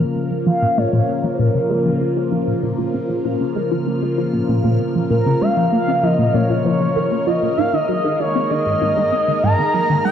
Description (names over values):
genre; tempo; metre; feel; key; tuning
ambient, sequencer-driven space music; 97 BPM; 4/4; straight; Bb minor; A4 = 439 Hz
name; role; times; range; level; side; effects
phased analog pad; sustained chords; 0.0-10.1 s; Db3 to Bb4; -21 LUFS; equal; phaser, chorus
resonant blip pluck; riff; 0.0-10.1 s; Ab2 to Db4; -20 LUFS; equal; phaser, analog chorus, analog delay
bubbling stepped-filter texture; texture; 0.0-10.1 s; F6; -41 LUFS; equal; chorus, built-in reverb
expressive synth lead; melody; 0.5-10.1 s; Bb4 to Bb5; -20 LUFS; equal; chorus, analog delay
room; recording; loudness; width
wet plate reverb, RT60 3.6 s; echo-heavy mix; -16 LUFS; side -9 dB against mid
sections
0.0-10.1 A section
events
fade-in on synth texture 0.0-10.1; filter sweep on synth arpeggio sound 0.0-10.1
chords
0.0 Bbm; 7.6 Absus2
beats
| 0.15 0.77 1.39 2.01 | 2.63 3.25 3.87 4.48 | 5.10 5.72 6.34 6.96 | 7.58 8.20 8.81 9.43 | 10.05